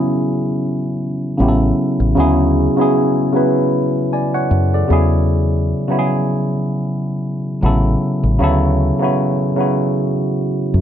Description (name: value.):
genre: R&B, neo-soul.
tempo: 77 BPM.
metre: 4/4.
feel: swing 56% on 16ths.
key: D lydian.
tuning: A4 = 440 Hz.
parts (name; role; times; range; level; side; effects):
tine electric piano; accompaniment; 0.0-10.8 s; C3 to G#5; -15 LUFS; equal; phaser.
deep dub fingered electric bass; bass; 1.4-10.8 s; A1 to F#2; -16 LUFS; equal; none.
room: moderate studio reverb, RT60 0.8 s.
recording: none.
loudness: -14 LUFS.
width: side -10 dB against mid.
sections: 0.0-10.8 A section.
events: none.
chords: 0.0 E69; 1.4 A; 2.2 Dmaj9; 4.9 E69; 7.6 A; 8.4 Dmaj9.